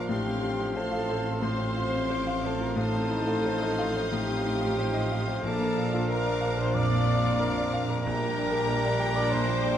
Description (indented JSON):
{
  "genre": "classical, romantic movement for piano and orchestra",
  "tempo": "91 BPM",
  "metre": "4/4",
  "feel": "rubato",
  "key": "Bb major",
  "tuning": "A4 = 444 Hz",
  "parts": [
    { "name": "warm concert grand piano", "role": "melody", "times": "0.0-9.8 s", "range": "Bb1 to G5", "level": "-30 LUFS", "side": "left 3 dB", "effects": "none" },
    { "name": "warm studio violin section", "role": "melody", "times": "0.0-9.8 s", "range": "C6 to Eb6", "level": "-42 LUFS", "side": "left 1 dB", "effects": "none" },
    { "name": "clear oboe", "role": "second line", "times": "0.0-9.8 s", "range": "F5 to Bb5", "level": "-38 LUFS", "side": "right 1 dB", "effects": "none" },
    { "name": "hollow concert flute", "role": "second line", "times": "0.0-9.8 s", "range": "G5 to D6", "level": "-36 LUFS", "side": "equal", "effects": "none" },
    { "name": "mellow clarinet", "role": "second line", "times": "0.0-9.8 s", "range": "C4 to Eb4", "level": "-38 LUFS", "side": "left 1 dB", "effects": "none" },
    { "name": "warm studio violin section", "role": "second line", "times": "0.0-9.8 s", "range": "F5 to C6", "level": "-39 LUFS", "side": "left 4 dB", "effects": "none" },
    { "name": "mellow bassoon", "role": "accompaniment", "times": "0.0-9.8 s", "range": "F3 to G3", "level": "-39 LUFS", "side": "right 3 dB", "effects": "none" },
    { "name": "warm studio viola section", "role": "accompaniment", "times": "0.0-9.8 s", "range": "G4 to D5", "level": "-38 LUFS", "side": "right 3 dB", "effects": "none" },
    { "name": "mellow trombone section", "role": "sustained chords", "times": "0.0-9.8 s", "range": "F3 to Eb4", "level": "-40 LUFS", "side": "right 6 dB", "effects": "none" },
    { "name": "warm French horn section", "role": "sustained chords", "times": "0.0-9.8 s", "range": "G4 to D5", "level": "-33 LUFS", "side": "left 2 dB", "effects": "none" },
    { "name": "warm studio cello section", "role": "bass", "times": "0.0-9.8 s", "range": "A2 to Bb2", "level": "-36 LUFS", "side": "right 2 dB", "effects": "none" },
    { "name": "warm studio double bass section", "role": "bass", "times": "0.0-9.8 s", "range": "A1 to Bb1", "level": "-34 LUFS", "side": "right 4 dB", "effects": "none" },
    { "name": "warm tuba", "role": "bass", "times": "0.0-9.8 s", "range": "A1 to Bb1", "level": "-38 LUFS", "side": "right 4 dB", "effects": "none" }
  ],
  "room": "moderate concert hall reverb, RT60 2.2 s",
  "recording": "close, detailed microphones",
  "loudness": "-25 LUFS",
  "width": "side -10 dB against mid",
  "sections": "0.0-9.8 A section",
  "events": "none",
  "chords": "0.1 F/A; 2.8 F7/A; 5.4 Bb; 8.0 Gm/Bb",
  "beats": "| 0.09 0.76 1.43 2.11 | 2.79 3.45 4.12 4.78 | 5.44 6.10 6.75 7.40 | 8.05 8.68 9.33"
}